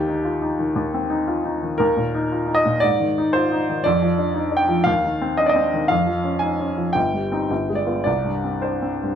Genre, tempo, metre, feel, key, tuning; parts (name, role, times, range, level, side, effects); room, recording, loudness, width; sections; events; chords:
classical, romantic character piece for solo piano; 115 BPM; 4/4; uneven beats, rubato; C minor; A4 = 440 Hz
clear baby grand piano; solo; 0.0-9.2 s; G1 to Ab5; -18 LUFS; equal
moderate stone room reverb, RT60 1.2 s; -18 LUFS; side -8 dB against mid
0.0-9.2 A section
0.0 Cm/Eb; 1.8 Eb5; 2.8 Ab; 3.9 Ebmaj9/F; 4.9 Cm/Eb; 5.9 Db/F; 7.0 Cm/G; 7.5 G7b9; 8.1 C5